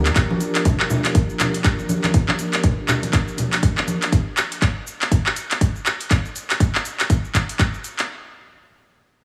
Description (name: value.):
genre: afro house.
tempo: 121 BPM.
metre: 4/4.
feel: swing 59% on 16ths.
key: G minor.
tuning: A4 = 441 Hz.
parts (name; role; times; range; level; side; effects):
warm analog pad; sustained chords; 0.0-4.1 s; F3 to Bb4; -30 LUFS; equal; chorus, sidechain pumping.
afro-pop drum kit; drums; 0.1-8.1 s; handclaps, hi-hat, shaker; -25 LUFS; equal; overdrive, studio reverb.
electronic kick drum; drums; 0.2-7.7 s; none; -21 LUFS; equal; studio reverb.
congas; percussion; 0.2-4.0 s; none; -27 LUFS; equal; none.
room: light reverb, small room ambience.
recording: none.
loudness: -20 LUFS.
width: mono.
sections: 0.0-8.1 A section.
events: none.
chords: 0.0 Gm7.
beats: | 0.16 0.65 1.15 1.65 | 2.14 2.64 3.13 3.63 | 4.12 4.62 5.12 5.61 | 6.11 6.60 7.10 7.59.